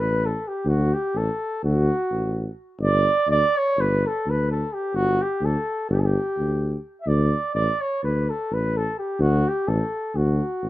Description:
balkan folk; 254 BPM (eighths); 9/8; straight; A4 = 440 Hz
mellow flugelhorn; melody; 0.0-10.7 s; F#4 to E5; -24 LUFS; right 1 dB
mellow tuba; bass; 0.0-10.7 s; G1 to D2; -22 LUFS; equal
small room ambience; rough home demo mix; -20 LUFS; side -16 dB against mid
0.0-10.7 A section
0.0 D; 2.8 G5; 7.1 D
0.18 0.42 | 0.66 0.90 1.14 1.38 1.61 1.85 2.09 2.33 2.56 | 2.80 3.04 3.28 3.52 3.75 3.99 4.23 4.46 4.70 | 4.94 5.17 5.41 5.65 5.88 6.12 6.36 6.59 6.83 | 7.07 7.30 7.54 7.77 8.01 8.24 8.48 8.71 8.95 | 9.19 9.42 9.66 9.89 10.13 10.36 10.60

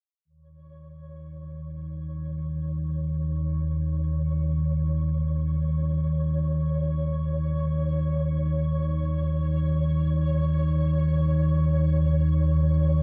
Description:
dark ambient drone; free time; A4 = 440 Hz
deep rumbling drone; drone; 1.0-13.0 s; Eb2 to Eb3; -26 LUFS; equal; built-in reverb
flickering grainy texture; texture; 0.7-13.0 s; Db5; -40 LUFS; equal; built-in reverb, shimmer reverb
moderate cathedral reverb, RT60 5.2 s; cassette tape; -25 LUFS; mono
0.3-13.0 A section
fade-in on synth texture 0.3-13.0
0.3 Dbsus2/Eb
free time

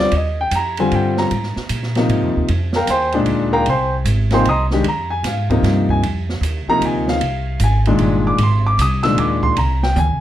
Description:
modal jazz; 152 BPM; 3/4; swing 65% on 8ths; F dorian; A4 = 440 Hz
warm concert grand piano; accompaniment; 0.0-10.2 s; Bb2 to E6; -17 LUFS; left 1 dB
upright bass; bass; 0.0-10.2 s; G1 to Bb2; -19 LUFS; equal
open jazz drum kit; drums; 0.1-10.1 s; hi-hat, kick drum, ride cymbal, snare drum, toms; -26 LUFS; right 4 dB
light reverb; dark, warm production; -15 LUFS; side -12 dB against mid
0.0-10.2 A section
drum fill 10.0
0.0 Fm11; 6.0 Ab
| 0.12 0.51 0.91 | 1.30 1.70 2.09 | 2.48 2.88 3.27 | 3.67 4.06 4.45 | 4.85 5.24 5.64 | 6.03 6.42 6.82 | 7.21 7.61 8.00 | 8.39 8.79 9.18 | 9.57 9.96

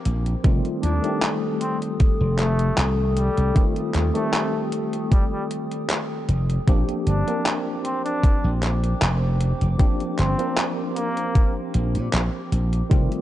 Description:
vaporwave; 77 BPM; 4/4; swing 53% on 16ths; Bb major; A4 = 439 Hz
tine electric piano; accompaniment; 0.0-13.2 s; Eb3 to Bb4; -27 LUFS; equal; overdrive, fast stereo tremolo, lush chorus, analog delay
warbly tape-like pad; sustained chords; 0.0-13.2 s; A4 to Eb6; -32 LUFS; left 3 dB; chorus, built-in reverb
slap bass; bass; 0.1-13.1 s; F1 to Bb2; -21 LUFS; equal; tube saturation
detuned 8-bit digital drum machine; drums; 0.1-13.2 s; handclaps, hi-hat; -27 LUFS; equal; overdrive
electronic kick drum; drums; 0.4-13.1 s; -18 LUFS; equal; overdrive
warm flugelhorn; melody; 0.8-11.6 s; G3 to D4; -30 LUFS; equal; vintage 12-bit sampler grit, tape echo
light reverb; dark, warm production, nothing above 10.8 kHz; -20 LUFS; side -13 dB against mid
0.0-13.2 A section
0.4 F9; 6.7 Bb69
| 0.45 1.22 2.00 2.78 | 3.56 4.34 5.12 5.90 | 6.68 7.46 8.24 9.02 | 9.80 10.57 11.35 12.13 | 12.91

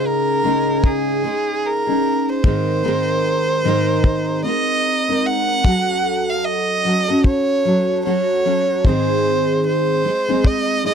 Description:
acoustic pop; 75 BPM; 4/4; swing 60% on 16ths; A4 = 439 Hz
warm violin; melody; 0.0-10.9 s; Ab4 to Gb5; -20 LUFS; right 2 dB
fingerpicked steel-string acoustic guitar; accompaniment; 0.0-10.9 s; Ab2 to Bb4; -19 LUFS; equal; double-tracked left and right
kick drum; drums; 0.8-10.7 s; -14 LUFS; left 1 dB
little or no reverb; dry, close 1970s-style studio recording; -16 LUFS; side -7 dB against mid
0.0-5.6 A section; 5.6-10.9 B section
0.0 Dbsus2; 2.4 Abadd9; 5.6 Gbm; 8.8 Ab
0.04 0.84 1.64 | 2.44 3.24 4.04 4.84 | 5.64 6.45 7.25 8.05 | 8.85 9.65 10.45

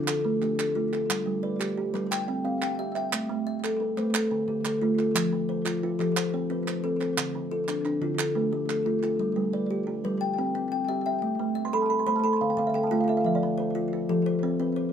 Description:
southern african traditional, mbira-style interlocking cycle; 118 BPM (dotted quarters); 12/8; straight; A4 = 440 Hz
kalimba; arpeggios; 0.0-14.9 s; D3 to G5; -27 LUFS; left 3 dB; slapback echo
kalimba; arpeggios; 0.0-14.9 s; D3 to C6; -29 LUFS; right 6 dB
group handclap; percussion; 0.1-9.1 s; -31 LUFS; right 6 dB
moderate small room reverb, RT60 0.6 s; faint mains hum; -24 LUFS; side -8 dB against mid
0.0-9.2 A section; 9.2-14.9 B section
kalimba fill 11.5-13.3
0.0 Dm; 1.1 G; 2.1 C; 3.1 Am; 4.1 Dm; 5.2 F; 7.2 Dm; 9.2 G; 10.2 C; 11.2 Am; 12.2 Dm; 13.3 F
0.08 0.59 | 1.10 1.61 2.11 2.62 | 3.13 3.63 4.14 4.65 | 5.15 5.66 6.17 6.67 | 7.18 7.69 8.19 8.70 | 9.20 9.71 10.21 10.72 | 11.23 11.73 12.24 12.75 | 13.25 13.76 14.27 14.77

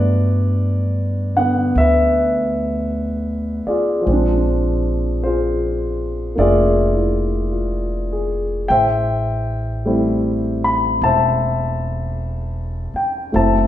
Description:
jazz ballad; 52 BPM; 4/4; swing 66% on 8ths; A4 = 440 Hz
warm grand piano; accompaniment; 0.0-13.7 s; D3 to B5; -18 LUFS; left 1 dB
upright bass; bass; 0.0-13.7 s; E1 to G2; -20 LUFS; equal
wet recital hall reverb, RT60 1.5 s; recorded in a church or concert hall, nothing above 11.0 kHz; -16 LUFS; side -12 dB against mid
0.0-13.7 A section
0.0 Gmaj7; 4.1 A#9; 8.7 Am7
0.58 1.74 2.90 | 4.05 5.21 6.37 7.53 | 8.70 9.86 11.02 12.17 | 13.32

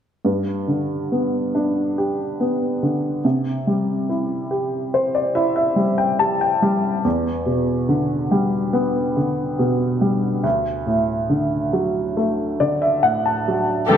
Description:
pop ballad; 70 BPM; 4/4; straight; G major; A4 = 442 Hz
warm upright piano; accompaniment; 0.2-14.0 s; D2 to A5; -18 LUFS; equal
warm studio string section; sustained chords; 13.9-14.0 s; D3 to A4; -12 LUFS; left 2 dB
wet recital hall reverb, RT60 1.4 s; -18 LUFS; side -8 dB against mid
0.2-13.9 A section
upright piano fill 4.5-7.0, 12.2-13.9
0.2 G; 3.2 C; 7.0 Em7; 10.4 D
| 0.24 1.10 1.96 2.81 | 3.67 4.51 5.36 6.20 | 7.05 7.89 8.74 9.59 | 10.45 11.31 12.17 13.04 | 13.91

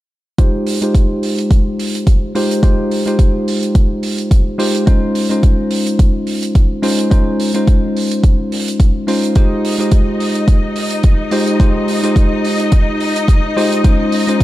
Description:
nu-disco, nu disco; 107 BPM; 4/4; swing 55% on 16ths; F minor; A4 = 440 Hz
bell-like tine electric piano; accompaniment; 0.4-14.4 s; Ab3 to C5; -16 LUFS; equal; sidechain pumping, low-pass filter, slapback echo
electronic kick drum; drums; 0.4-14.4 s; -11 LUFS; equal; studio reverb
hi-hat; drums; 0.4-14.4 s; -25 LUFS; right 5 dB; studio reverb
clear studio string section; sustained chords; 9.4-14.4 s; Eb4 to Eb5; -21 LUFS; left 3 dB; sidechain pumping
light reverb, studio reverb; dark, warm production; -12 LUFS; side -16 dB against mid
0.4-14.4 A section
filter sweep on tine electric piano 0.4-14.4
0.4 Fm7; 4.9 Dbmaj9/Ab; 9.4 Fm7; 13.8 Dbmaj9/Ab
| 0.39 0.95 1.51 2.07 | 2.63 3.19 3.75 4.31 | 4.88 5.44 6.00 6.56 | 7.12 7.68 8.24 8.80 | 9.36 9.92 10.48 11.04 | 11.60 12.16 12.72 13.29 | 13.85 14.41

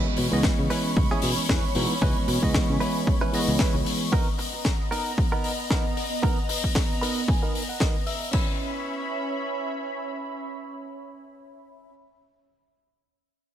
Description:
nu-disco, nu disco; 114 BPM; 4/4; swing 55% on 16ths; C# dorian; A4 = 439 Hz
barky tine electric piano; accompaniment; 0.0-4.1 s; E3 to D#5; -27 LUFS; right 1 dB; sidechain pumping, dub echo
lush unison pad; sustained chords; 0.0-11.9 s; B3 to C#6; -32 LUFS; right 1 dB; chorus, phaser, sidechain pumping
direct-recorded clean electric guitar; riff; 0.0-11.9 s; B3 to B5; -33 LUFS; right 2 dB; lush chorus, low-pass filter, dub echo
modern bright fingered electric bass; bass; 0.2-3.8 s; C#2 to C#3; -28 LUFS; equal
tight funk drum kit; drums; 0.2-8.4 s; crash cymbal, hi-hat, snare drum; -29 LUFS; left 3 dB
electronic kick drum; drums; 0.4-8.4 s; -25 LUFS; equal; overdrive
light reverb, small room reverb; -22 LUFS; side -10 dB against mid
0.0-8.3 A section; 8.3-12.5 B section
filter sweep on clean electric guitar 0.0-8.3; clean electric guitar fill 6.8-8.3
0.0 C#m7; 4.1 Bmaj7; 8.3 C#m7
0.44 0.96 1.49 | 2.02 2.54 3.07 3.60 | 4.12 4.65 5.17 5.70 | 6.23 6.75 7.28 7.81 | 8.33 8.86 9.39 9.91 | 10.44 10.96 11.49

